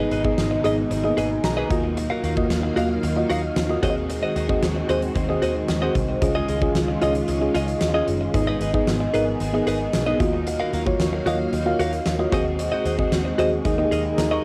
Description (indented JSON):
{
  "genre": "1980s-style pop",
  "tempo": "113 BPM",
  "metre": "4/4",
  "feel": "straight",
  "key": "unclear",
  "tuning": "A4 = 440 Hz",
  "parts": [
    { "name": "biting overdriven guitar", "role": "accompaniment", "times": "0.0-14.4 s", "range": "C#3 to G#4", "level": "-40 LUFS", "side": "equal", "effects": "analog chorus, cassette tape" },
    { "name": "mellow FM electric piano", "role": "accompaniment", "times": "0.0-14.4 s", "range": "A#3 to C#6", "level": "-26 LUFS", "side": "equal", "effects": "chorus, cassette tape" },
    { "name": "soft string machine", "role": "sustained chords", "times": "0.0-14.4 s", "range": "B2 to E#5", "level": "-32 LUFS", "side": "equal", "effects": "ensemble chorus, cassette tape" },
    { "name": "direct-recorded clean electric guitar", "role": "riff", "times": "0.0-14.4 s", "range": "E#4 to E#5", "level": "-30 LUFS", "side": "equal", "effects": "subtle chorus, cassette tape, analog delay" },
    { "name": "vintage muted picked electric bass", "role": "bass", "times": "0.0-14.4 s", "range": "F#1 to D#2", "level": "-30 LUFS", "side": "equal", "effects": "none" },
    { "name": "huge arena drum kit", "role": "drums", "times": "0.1-14.3 s", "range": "hi-hat, kick drum, snare drum, tambourine", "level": "-30 LUFS", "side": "equal", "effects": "none" }
  ],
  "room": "moderate booth ambience, RT60 0.2 s",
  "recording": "home recording on cassette",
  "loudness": "-22 LUFS",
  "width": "mono",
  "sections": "0.0-14.4 A section",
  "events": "none",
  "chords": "0.0 G#m; 1.7 D#madd9; 3.8 G#7/D#; 6.2 C#add9; 8.3 G#m; 10.2 D#madd9; 12.3 G#7/D#; 13.7 D#sus4",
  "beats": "0.38 0.91 1.44 | 1.97 2.50 3.03 3.56 | 4.09 4.62 5.16 5.69 | 6.22 6.75 7.28 7.81 | 8.34 8.87 9.40 9.94 | 10.47 11.00 11.53 12.06 | 12.59 13.12 13.65 14.18"
}